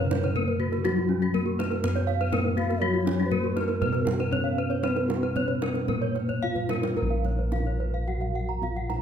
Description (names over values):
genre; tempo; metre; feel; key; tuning
Balinese gamelan; 109-122 BPM; 4/4; straight; Bb pelog; A4 = 440 Hz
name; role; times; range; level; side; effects
gamelan-type bronze metallophone; melody; 0.0-9.0 s; Gb3 to Gb4; -31 LUFS; left 3 dB; none
mellow low xiao; second line; 0.0-4.9 s; Gb4 to F5; -36 LUFS; left 4 dB; none
gamelan-type bronze metallophone; accompaniment; 0.0-9.0 s; Db3 to Cb4+35c; -36 LUFS; left 3 dB; none
gamelan-type bronze metallophone; arpeggios; 0.0-9.0 s; Db4 to Bb5; -33 LUFS; right 8 dB; none
gamelan-type bossed gongs; bass; 0.0-9.0 s; Bb1 to Cb5+35c; -29 LUFS; equal; none
kendang; percussion; 0.0-9.0 s; none; -33 LUFS; right 5 dB; none
gamelan-type bronze metallophone; arpeggios; 0.2-8.9 s; Gb4 to Gb5; -32 LUFS; left 4 dB; none
room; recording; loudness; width
moderate recital hall reverb, RT60 1.4 s; none; -24 LUFS; side -8 dB against mid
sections
0.0-7.0 A section; 7.0-9.0 B section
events
drum fill 6.3-7.0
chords
none